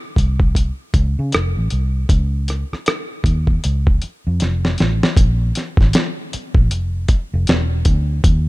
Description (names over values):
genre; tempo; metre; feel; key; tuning
R&B, neo-soul; 78 BPM; 4/4; swing 60% on 16ths; unclear; A4 = 439 Hz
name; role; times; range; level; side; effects
vintage muted fingered electric bass; bass; 0.2-8.5 s; E1 to Db3; -18 LUFS; equal; none
dusty soul sampler-style drum kit; drums; 0.2-8.5 s; hi-hat, kick drum, rim click, snare drum; -16 LUFS; equal; none
room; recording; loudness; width
digital ambience; dark, warm production; -15 LUFS; side -20 dB against mid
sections
0.0-5.2 A section; 5.2-8.5 B section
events
drum fill 4.4-5.2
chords
none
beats
0.55 1.32 | 2.09 2.86 3.63 4.40 | 5.17 5.93 6.71 7.47 | 8.24